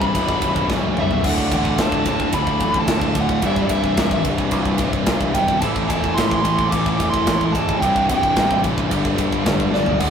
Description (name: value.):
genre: heavy metal.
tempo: 110 BPM.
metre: 4/4.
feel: straight.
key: unclear.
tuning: A4 = 440 Hz.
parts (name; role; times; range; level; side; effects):
dark smooth lead guitar; melody; 0.0-10.1 s; D5 to D6; -22 LUFS; equal; overdrive.
high-gain lead guitar; second line; 0.0-10.1 s; F#3 to A4; -29 LUFS; right 3 dB; none.
distorted electric guitar; riff; 0.0-10.1 s; B1 to A3; -23 LUFS; left 4 dB; distortion.
scooped high-gain guitar; riff; 0.0-10.1 s; B1 to A3; -27 LUFS; right 5 dB; distortion.
sludgy distorted guitar; riff; 0.0-10.1 s; B1 to A4; -25 LUFS; right 1 dB; overdrive.
growling picked electric bass; bass; 0.0-10.1 s; B0 to C2; -26 LUFS; right 1 dB; overdrive.
tight metal drum kit; drums; 0.0-10.1 s; crash cymbal, kick drum, ride cymbal, snare drum, toms; -23 LUFS; equal; none.
room: light reverb.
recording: rough rehearsal-room recording, warm saturation.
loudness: -16 LUFS.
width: side -7 dB against mid.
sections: 0.0-1.2 A section; 1.2-10.1 A section.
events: drum fill 0.7-1.2, 9.7.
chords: 0.1 Bm; 1.2 D; 3.4 C; 5.6 Am; 7.8 C; 8.9 G.